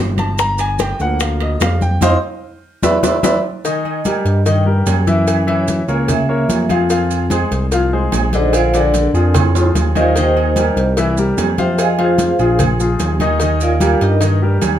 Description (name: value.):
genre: Afro-Cuban jazz.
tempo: 147 BPM.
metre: 4/4.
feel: straight.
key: Eb major.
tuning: A4 = 440 Hz.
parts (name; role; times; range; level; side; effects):
warm grand piano; accompaniment; 0.0-14.8 s; D3 to Bb5; -18 LUFS; left 2 dB; none.
smooth synth bass; bass; 0.0-14.8 s; G1 to G2; -17 LUFS; equal; none.
bongos and cowbell; percussion; 0.2-14.8 s; none; -24 LUFS; left 5 dB; none.
congas; percussion; 0.2-14.8 s; none; -23 LUFS; equal; none.
maracas; percussion; 0.2-14.8 s; none; -30 LUFS; right 8 dB; none.
timbales and agogo bells; percussion; 0.2-14.8 s; none; -23 LUFS; right 9 dB; none.
vibraphone with medium hard mallets; melody; 3.9-14.2 s; D4 to Ab5; -19 LUFS; right 1 dB; none.
room: moderate club reverb, RT60 0.8 s.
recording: none.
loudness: -13 LUFS.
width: side -10 dB against mid.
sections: 0.0-3.6 A section; 3.6-14.8 A section.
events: grand piano solo 0.0-3.6; band accent 2.0-3.6; vibraphone solo 3.6-14.8; drum fill 9.3-10.2.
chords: 0.4 Gm7; 2.0 F5; 2.8 E5; 3.6 Eb; 5.3 Gb7; 6.9 Bb9; 10.2 Eb6; 11.0 C7; 11.8 Fm7; 12.6 Bb5; 13.4 Ebmaj9.